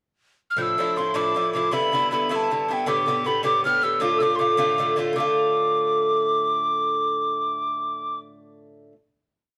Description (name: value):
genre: celtic folk, Celtic jig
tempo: 105 BPM (dotted quarters)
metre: 6/8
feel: straight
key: D dorian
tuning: A4 = 440 Hz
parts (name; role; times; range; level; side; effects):
- mellow hollow mid whistle; melody; 0.5-8.2 s; G5 to G6; -25 LUFS; equal; none
- Irish bouzouki; accompaniment; 0.6-9.0 s; G2 to G4; -27 LUFS; equal; none
room: moderate studio reverb, RT60 0.8 s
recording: band playing live in one room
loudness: -23 LUFS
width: mono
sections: 0.0-0.6 pickup bar; 0.6-5.2 A section; 5.2-7.4 final chord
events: none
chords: 0.0 N.C.; 0.6 Dmadd9; 1.7 Em7; 2.9 Gadd9; 4.0 Dm